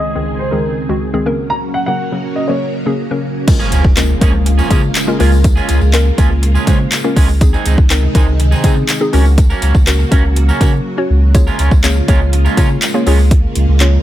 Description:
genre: dance-pop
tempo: 122 BPM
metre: 4/4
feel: straight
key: Db major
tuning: A4 = 440 Hz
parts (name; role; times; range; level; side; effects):
- dark baby grand piano; melody; 0.0-2.7 s; Bb4 to Bb5; -20 LUFS; equal; low-pass filter, digital delay
- hollow square pluck; accompaniment; 0.0-14.0 s; Db2 to Db5; -19 LUFS; left 2 dB; chorus, sidechain pumping, low-pass filter
- string machine, full ensemble; sustained chords; 0.0-14.0 s; Db2 to Bb4; -21 LUFS; right 1 dB; ensemble chorus, sidechain pumping, low-pass filter
- electric guitar at the edge of break-up; riff; 3.5-13.2 s; F3 to Bb4; -22 LUFS; right 5 dB; wide subtle chorus
- deep house drum kit; drums; 3.5-13.9 s; crash cymbal, handclaps, hi-hat, kick drum; -13 LUFS; equal; overdrive
- tambourine; percussion; 3.5-13.3 s; none; -30 LUFS; left 8 dB; none
- impact; sound effects; 3.5-5.4 s; none; -24 LUFS; equal; none
- warm sub bass; bass; 3.7-14.0 s; Db2 to Db3; -12 LUFS; equal; sidechain pumping
room: little or no reverb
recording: none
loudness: -10 LUFS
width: side -13 dB against mid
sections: 0.0-3.5 A section; 3.5-14.0 B section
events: drop 3.5-14.0; impact 3.5-5.4; silent gap 10.9-11.3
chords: 0.0 Ab/Db; 1.3 Gb/Db; 3.5 Db6; 5.2 Bbm7/Db; 7.4 Ab; 9.1 Gb/Db; 11.3 Db6

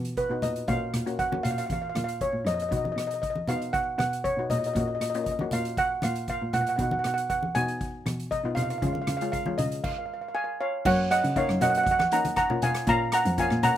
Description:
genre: calypso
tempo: 118 BPM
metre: 4/4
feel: straight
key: F# major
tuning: A4 = 440 Hz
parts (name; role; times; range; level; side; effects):
- steel pan; melody; 0.0-13.8 s; B4 to A#5; -26 LUFS; right 1 dB; none
- dark cello; bass; 0.0-13.8 s; E#2 to C#3; -31 LUFS; equal; none
- street-band drum kit; drums; 0.0-13.8 s; crash cymbal, hi-hat, kick drum, rim click; -36 LUFS; equal; none
- steel pan; accompaniment; 0.3-13.8 s; G#3 to F#4; -34 LUFS; left 5 dB; slapback echo
- congas; percussion; 0.4-13.8 s; none; -33 LUFS; left 1 dB; none
room: little or no reverb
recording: recorded outdoors, with no room sound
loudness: -24 LUFS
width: side -11 dB against mid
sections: 0.0-10.9 A section; 10.9-13.8 B section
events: stop 9.8-10.9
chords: 0.0 Bmaj7; 0.7 F#maj7/A#; 2.7 B; 4.8 F#maj7/A#; 6.8 B; 8.8 C#; 10.9 F#; 12.9 A#m

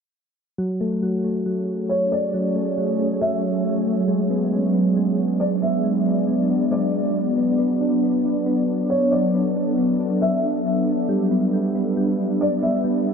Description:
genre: hip hop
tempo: 137 BPM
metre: 4/4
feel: half-time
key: F# minor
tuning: A4 = 441 Hz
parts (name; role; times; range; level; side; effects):
- ethereal airy pad; sustained chords; 1.6-13.1 s; F#3 to E5; -21 LUFS; right 1 dB; ensemble chorus, built-in reverb
- soft electric-piano-like synth keys; arpeggios; 0.6-13.1 s; F#3 to D4; -24 LUFS; left 1 dB; chorus, analog delay
- felt-muted upright piano; melody; 1.9-12.8 s; C#5 to E5; -26 LUFS; equal; wide subtle chorus, analog delay
room: wet huge ambient reverb, RT60 4.9 s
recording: dreamy mix soaked in reverb, low-pass filter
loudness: -19 LUFS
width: side -6 dB against mid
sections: 0.6-13.1 A section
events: filter sweep 0.6-13.1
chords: 0.6 F#madd9; 4.1 G#m7b5; 7.6 Bm7; 11.1 G

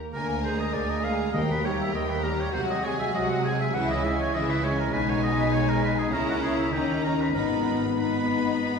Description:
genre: quick classical-period movement for symphony orchestra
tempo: 100 BPM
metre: 4/4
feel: rubato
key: G# minor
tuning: A4 = 440 Hz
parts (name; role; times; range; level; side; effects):
- clear chamber violin section; melody; 0.1-8.8 s; E5 to B5; -35 LUFS; left 6 dB; none
- clear chamber violin section; second line; 0.1-8.8 s; C#4 to A#4; -33 LUFS; left 1 dB; none
- warm oboe; second line; 0.1-8.8 s; E4 to G#5; -30 LUFS; right 1 dB; none
- rich symphonic viola section; accompaniment; 0.1-8.8 s; E3 to C#4; -31 LUFS; equal; none
- mellow French horn section; sustained chords; 0.1-8.8 s; G#3 to G#4; -30 LUFS; left 4 dB; none
- clear chamber double bass section; bass; 0.1-8.8 s; G#1 to D#2; -34 LUFS; right 2 dB; none
- rich symphonic cello section; bass; 0.1-8.8 s; D2 to D#3; -31 LUFS; right 3 dB; none
- timpani; percussion; 1.3-2.2, 7.4-8.3 s; G#2 to D#3; -36 LUFS; left 2 dB; none
room: wet concert hall reverb, RT60 1.9 s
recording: heard from further back in the room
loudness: -23 LUFS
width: side -5 dB against mid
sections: 0.0-8.8 A section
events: none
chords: 0.1 A#7/D; 1.3 D#; 2.5 G#7/B#; 3.7 C#m; 4.9 G#m/B; 6.1 A#dim/C#; 6.7 D#7; 7.4 G#m

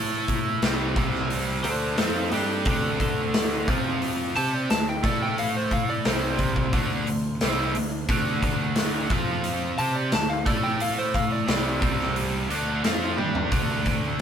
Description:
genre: blues rock power trio and southern rock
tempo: 88 BPM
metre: 4/4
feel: straight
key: unclear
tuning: A4 = 440 Hz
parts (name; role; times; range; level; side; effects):
- cranked stack guitar; riff; 0.0-14.2 s; C3 to C5; -26 LUFS; right 2 dB; overdrive
- growling picked electric bass; bass; 0.0-14.2 s; C2 to C3; -31 LUFS; equal; overdrive
- big rock drum kit; drums; 0.3-14.0 s; hi-hat, kick drum, snare drum, toms; -26 LUFS; left 1 dB; none
- lightly driven lead guitar; melody; 1.6-13.5 s; C4 to A5; -30 LUFS; equal; none
room: light reverb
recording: band playing live in one room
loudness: -22 LUFS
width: side -8 dB against mid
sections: 0.0-14.2 A section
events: drum fill 13.2-13.5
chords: 0.0 A5; 0.6 C5; 1.6 D5; 3.7 F5; 4.4 D5; 5.0 A5; 6.1 C5; 6.7 D5; 9.1 F5; 9.8 D5; 10.5 A5; 11.5 C5; 12.5 D5

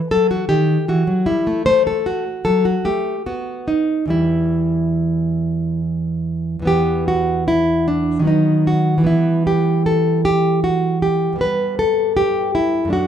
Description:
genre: classical, baroque-style dance for nylon-string guitar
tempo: 69-79 BPM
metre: 3/4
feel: rubato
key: E minor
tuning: A4 = 440 Hz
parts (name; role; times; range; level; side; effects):
- nylon-string guitar; solo; 0.0-13.1 s; E2 to C5; -15 LUFS; equal; none
room: moderate large studio reverb, RT60 1.2 s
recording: band playing live in one room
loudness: -15 LUFS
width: side -9 dB against mid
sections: 0.0-6.7 A section; 6.7-13.1 B section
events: none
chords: 0.0 B (rootless); 0.9 Em; 1.7 F#dim; 3.3 N.C.; 4.1 Em; 6.7 E5; 8.3 B/D#; 9.1 Em; 11.4 G

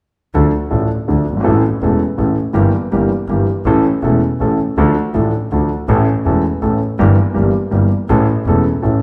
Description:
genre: tango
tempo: 163 BPM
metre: 3/4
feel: rubato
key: D harmonic minor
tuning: A4 = 440 Hz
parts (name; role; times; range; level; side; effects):
- warm concert grand piano; accompaniment; 0.3-9.0 s; E1 to A4; -16 LUFS; equal; none
- bright double bass; bass; 0.3-9.0 s; E1 to D2; -21 LUFS; equal; none
room: wet large studio reverb, RT60 1.3 s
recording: heard from further back in the room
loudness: -15 LUFS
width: mono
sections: 0.3-4.8 A section; 4.8-9.0 B section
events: none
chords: 0.3 Dm; 1.5 A; 2.6 Edim/G; 3.7 A; 4.8 Dm; 5.9 A; 7.0 Edim/G; 8.1 A

